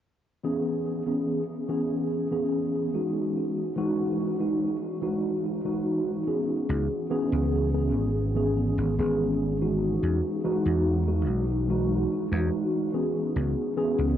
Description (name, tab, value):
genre	vaporwave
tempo	72 BPM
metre	4/4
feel	straight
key	E major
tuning	A4 = 440 Hz
part	mellow tine electric piano	accompaniment	0.4-14.2 s	E3 to G#4	-25 LUFS	equal	medium stereo tremolo, analog chorus, tape echo
part	vintage slap bass	bass	6.7-14.2 s	G#1 to E2	-27 LUFS	equal	tube saturation
room	wet huge ambient reverb, RT60 8.0 s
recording	dreamy mix soaked in reverb, cassette tape, nothing above 7.6 kHz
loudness	-24 LUFS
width	side -10 dB against mid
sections	0.0-13.4 A section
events	none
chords	0.0 Emaj9; 6.7 C#m7; 10.0 Emaj9; 13.4 C#m7